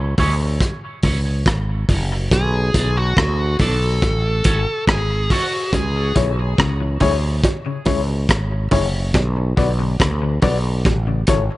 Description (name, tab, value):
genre	dub reggae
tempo	70 BPM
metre	4/4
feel	straight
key	C# phrygian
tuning	A4 = 441 Hz
part	fretless electric bass	bass	0.0-11.5 s	F#1 to D2	-20 LUFS	equal	none
part	electric guitar with an envelope filter	accompaniment	0.2-5.5 s	C#4 to D5	-29 LUFS	right 3 dB	high-pass filter, dub echo
part	barky reed electric piano	stabs	0.2-11.4 s	E4 to D5	-26 LUFS	left 5 dB	overdrive, fast tremolo, high-pass filter, dub echo
part	crunchy breakbeat drum kit	drums	0.2-11.5 s	hi-hat, kick drum, rim click	-19 LUFS	equal	none
part	dark smooth lead guitar	melody	2.3-6.1 s	F#4 to A4	-23 LUFS	equal	overdrive, dub echo
part	semi-hollow electric guitar	arpeggios	5.7-11.4 s	B2 to E3	-29 LUFS	left 6 dB	none
part	bongos	percussion	5.7-11.5 s	none	-26 LUFS	right 2 dB	dub echo
room	studio ambience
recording	nothing above 10.5 kHz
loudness	-16 LUFS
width	side -18 dB against mid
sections	0.0-11.6 A section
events	break 0.0-5.7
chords	0.0 C#m; 2.3 Bm; 4.0 A; 5.7 C#m; 9.1 Bm; 10.9 A